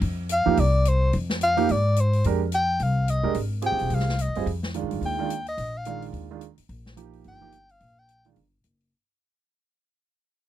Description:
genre	modal jazz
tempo	216 BPM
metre	4/4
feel	swing 59% on 8ths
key	F dorian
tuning	A4 = 440 Hz
part	upright bass	bass	0.0-8.9 s	E1 to Ab2	-25 LUFS	left 1 dB	none
part	swinging big-band drum kit	drums	0.0-8.9 s	hi-hat, snare drum	-36 LUFS	left 2 dB	none
part	mellow soprano saxophone	melody	0.3-8.3 s	C5 to G5	-25 LUFS	left 2 dB	none
part	warm grand piano	accompaniment	0.5-8.4 s	Eb3 to Bb4	-27 LUFS	right 13 dB	none
room	little or no reverb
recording	dry, close 1970s-style studio recording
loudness	-21 LUFS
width	side -12 dB against mid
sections	0.0-8.9 A section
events	fade-out 0.0-8.9; soprano saxophone solo 0.0-8.9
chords	0.0 Fmadd9; 4.5 Ebadd9

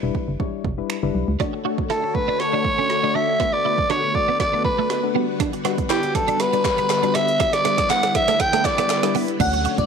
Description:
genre	dance-pop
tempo	120 BPM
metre	4/4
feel	straight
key	unclear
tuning	A4 = 441 Hz
part	soft electric-piano-like synth keys	accompaniment	0.0-9.9 s	G3 to D5	-27 LUFS	left 13 dB	chorus, sidechain pumping
part	organ-like FM bass	bass	0.0-1.4, 9.4-9.9 s	E1 to D2	-24 LUFS	equal	sidechain pumping
part	deep house drum kit	drums	0.1-9.9 s	crash cymbal, finger snaps, hi-hat, kick drum, snare drum	-26 LUFS	right 5 dB	none
part	string machine, violins	sustained chords	1.4-9.9 s	D3 to C#5	-28 LUFS	equal	ensemble chorus, sidechain pumping
part	twelve-string electric guitar	riff	1.4-9.8 s	A3 to F#4	-27 LUFS	right 13 dB	ensemble chorus
part	raspy soprano saxophone	melody	1.9-9.2 s	G4 to G5	-20 LUFS	equal	none
part	group handclap	percussion	5.9-9.0 s	none	-31 LUFS	left 14 dB	none
part	airy dreamy lead	melody	9.4-9.9 s	D5 to F#5	-22 LUFS	equal	chorus, sidechain pumping, tape echo
room	light reverb, digital ambience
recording	1960s-style stereo with parts hard left and right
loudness	-18 LUFS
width	side -6 dB against mid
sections	0.0-1.4 A section; 1.4-9.4 B section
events	build-up 1.4-9.4; drum fill 1.4-9.4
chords	0.0 Em7; 1.4 Dmaj7; 3.4 Bm7; 5.2 Gmaj7; 7.4 Em7

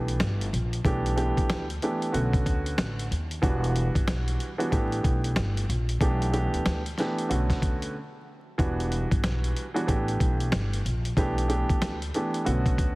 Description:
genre	hip hop, boom-bap hip-hop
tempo	93 BPM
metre	4/4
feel	swing 62% on 16ths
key	unclear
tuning	A4 = 440 Hz
part	warm upright piano	accompaniment	0.0-13.0 s	D3 to G4	-29 LUFS	right 1 dB	high-pass filter, low-pass filter
part	upright bass	bass	0.0-13.0 s	E1 to D#2	-28 LUFS	equal	none
part	dusty soul sampler-style drum kit	drums	0.1-13.0 s	hi-hat, kick drum, snare drum	-28 LUFS	equal	none
room	small room ambience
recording	heavily compressed radio sound, multiband compression, vinyl crackle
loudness	-24 LUFS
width	side -22 dB against mid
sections	0.0-13.0 A section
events	break 7.9-8.6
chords	0.0 A9sus4; 0.8 G6/B; 2.1 Bm7; 3.4 Em7; 4.7 A9sus4; 6.0 G6/B; 7.3 Bm7; 8.6 Em7; 9.9 A9sus4; 11.2 G6/B

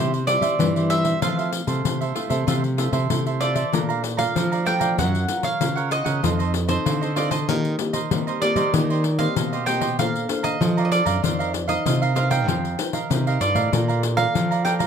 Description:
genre	samba and choro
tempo	96 BPM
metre	4/4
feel	straight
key	F major, Bb major from 3.7 s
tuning	A4 = 440 Hz
part	mandolin	melody	0.0-14.7 s	C5 to G5	-25 LUFS	right 2 dB	none
part	cavaquinho	accompaniment	0.0-14.9 s	Eb4 to Bb5	-27 LUFS	right 9 dB	none
part	nylon-string guitar	accompaniment	0.0-14.9 s	G2 to D5	-29 LUFS	left 4 dB	none
part	nylon-string guitar	bass	0.0-14.9 s	F2 to G3	-24 LUFS	right 1 dB	none
part	pandeiro	percussion	0.1-14.9 s	none	-26 LUFS	left 7 dB	none
room	light reverb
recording	close, detailed microphones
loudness	-19 LUFS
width	side -7 dB against mid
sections	0.0-3.7 A section; 3.7-14.9 B section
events	none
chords	0.0 C; 1.2 Fmaj7; 3.7 Bbmaj7; 5.0 Gbmaj7; 6.2 F7; 7.5 Cm7/Eb; 8.7 Eb6; 10.0 Bbmaj9; 11.2 F7sus4; 13.7 Bbmaj7

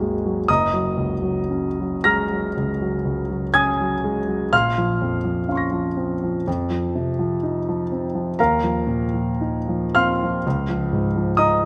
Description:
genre	classical, impressionist solo piano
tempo	53-65 BPM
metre	4/4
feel	rubato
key	unclear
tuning	A4 = 440 Hz
part	clear grand piano	solo	0.0-11.7 s	Gb1 to Bb6	-22 LUFS	equal	none
room	moderate concert hall reverb, RT60 2.2 s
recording	close, detailed microphones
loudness	-22 LUFS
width	mono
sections	0.0-11.7 A section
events	none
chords	0.5 Gb69; 4.5 Bbmadd9; 6.5 F5; 8.4 Ebsus2; 10.4 Db69

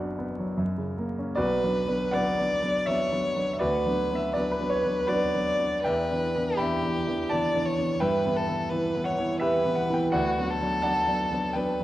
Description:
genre	classical, romantic duo for violin and grand piano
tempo	82 BPM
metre	3/4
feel	uneven beats, rubato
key	B minor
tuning	A4 = 442 Hz
part	warm baby grand piano	accompaniment	0.0-11.8 s	F#1 to B5	-26 LUFS	equal	none
part	clear violin	melody	1.4-11.8 s	F#4 to D5	-27 LUFS	equal	none
room	wet recital hall reverb, RT60 1.6 s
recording	dark, warm production, vinyl crackle, nothing above 11.0 kHz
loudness	-24 LUFS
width	side -14 dB against mid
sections	0.0-1.4 A section; 1.4-11.8 B section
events	none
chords	0.0 Bm/F#; 0.6 F#; 1.4 Bm; 3.6 Bm/D; 5.8 Em7; 8.0 Em/G; 10.1 Bm/D

